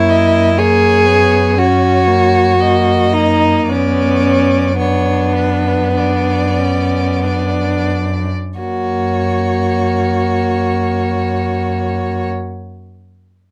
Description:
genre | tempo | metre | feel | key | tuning
classical, slow romantic movement for string quartet | 42-61 BPM | 4/4 | rubato | F# major | A4 = 440 Hz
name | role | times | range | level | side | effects
rich violin | melody | 0.0-12.3 s | B4 to D#5 | -25 LUFS | equal | none
rich violin | second line | 0.0-12.3 s | B3 to G#4 | -17 LUFS | equal | none
rich viola | accompaniment | 0.0-12.3 s | A#3 to D4 | -22 LUFS | equal | none
rich cello | bass | 0.0-12.3 s | F#2 | -20 LUFS | equal | none
room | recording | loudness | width
light reverb | close, detailed microphones | -14 LUFS | mono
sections
0.0-8.6 A section; 8.6-13.5 B section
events
slowing down 0.0-8.6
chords
0.0 F#; 3.7 Bm/F#; 8.6 F#

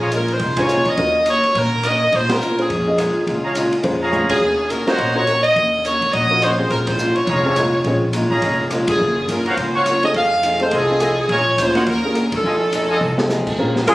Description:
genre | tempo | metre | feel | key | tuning
jazz, big band swing | 210 BPM | 4/4 | swing 59% on 8ths | Bb minor | A4 = 440 Hz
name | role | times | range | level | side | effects
clear saxophone section | melody | 0.0-13.3 s | Ab4 to F5 | -18 LUFS | equal | none
fingerpicked steel-string acoustic guitar | accompaniment | 0.0-13.9 s | Bb2 to G#4 | -23 LUFS | left 1 dB | none
clear trumpet section | stabs | 0.0-1.0, 3.4-13.0 s | Eb4 to Db6 | -22 LUFS | equal | none
upright bass | bass | 0.0-13.9 s | F1 to Bb2 | -25 LUFS | equal | none
open jazz drum kit | drums | 0.1-13.9 s | crash cymbal, hi-hat, kick drum, ride cymbal, rim click, snare drum, toms | -26 LUFS | equal | none
warm concert grand piano | accompaniment | 0.6-8.0, 10.0-13.7 s | A3 to Eb5 | -22 LUFS | equal | none
dark trumpet | melody | 13.9 s | Ab4 | -15 LUFS | equal | none
warm saxophone section | sustained chords | 13.9 s | Ab3 to Bb4 | -14 LUFS | equal | none
room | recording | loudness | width
light reverb | recorded on a phone in the room, studio reverb | -15 LUFS | side -18 dB against mid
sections
0.0-13.6 A section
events
band accent 0.6, 2.3, 4.3, 6.8, 8.9, 12.3; drum fill 4.1, 13.0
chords
0.0 Bbm7; 1.0 Ebm7; 2.1 Bbm7; 4.4 Ebm7; 6.7 Bbm7; 9.0 Gbmaj7; 10.1 F7#9; 11.3 Bbm7; 11.9 Ebm7; 12.4 F7#9

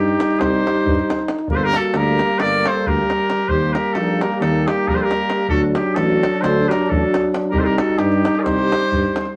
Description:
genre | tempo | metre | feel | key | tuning
balkan folk, Balkan brass band | 268 BPM (eighths) | 9/8 | straight | C dorian sharp4 | A4 = 441 Hz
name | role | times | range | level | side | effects
clear trumpet | melody | 0.0-9.3 s | G4 to D5 | -24 LUFS | equal | none
clear clarinet | second line | 0.0-9.3 s | Eb4 to Bb4 | -26 LUFS | equal | none
warm euphonium | accompaniment | 0.0-9.4 s | F#3 to G3 | -26 LUFS | equal | none
warm trombone | accompaniment | 0.0-9.4 s | Bb3 to Eb4 | -26 LUFS | equal | none
mellow tuba | bass | 0.0-9.1 s | G1 to G2 | -25 LUFS | equal | none
davul | percussion | 0.1-9.3 s | none | -28 LUFS | equal | none
room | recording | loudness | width
wet studio reverb, RT60 0.6 s | vinyl crackle | -18 LUFS | mono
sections
0.0-9.4 A section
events
none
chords
0.0 Cm; 1.5 Gm; 3.5 Eb; 5.5 D; 7.5 Cm

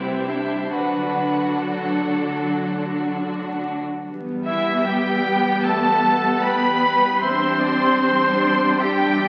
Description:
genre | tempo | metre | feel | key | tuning
cinematic, emotional film score for orchestra | 71-76 BPM | 4/4 | rubato | unclear | A4 = 440 Hz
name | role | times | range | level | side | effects
bright symphonic violin section | melody | 0.0-9.3 s | E5 to C6 | -27 LUFS | equal | none
rich violin | melody | 0.0-3.2 s | A4 to C5 | -32 LUFS | equal | none
rich studio violin section | second line | 0.0-9.3 s | D4 to C5 | -30 LUFS | equal | none
warm studio viola section | accompaniment | 0.0-9.3 s | F#3 to D4 | -27 LUFS | equal | none
rich studio cello section | bass | 0.0-9.3 s | C3 to C4 | -30 LUFS | equal | none
rich studio double bass section | bass | 0.0-9.3 s | C2 to E2 | -39 LUFS | equal | none
mellow French horn section | sustained chords | 4.1-9.3 s | G3 to D4 | -31 LUFS | equal | none
mellow hollow concert flute | second line | 4.5-9.3 s | E5 to C6 | -26 LUFS | equal | none
warm oboe | second line | 4.5-9.3 s | E4 to C5 | -27 LUFS | equal | none
clear clarinet | second line | 5.6-9.3 s | C5 to G5 | -32 LUFS | equal | none
room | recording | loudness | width
wet scoring stage reverb, RT60 1.7 s | very old 78 rpm record, vinyl crackle | -21 LUFS | mono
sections
0.0-4.1 A section; 4.1-9.3 B section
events
none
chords
0.0 Cadd9; 0.7 D; 4.1 Em; 7.2 Cadd9/E

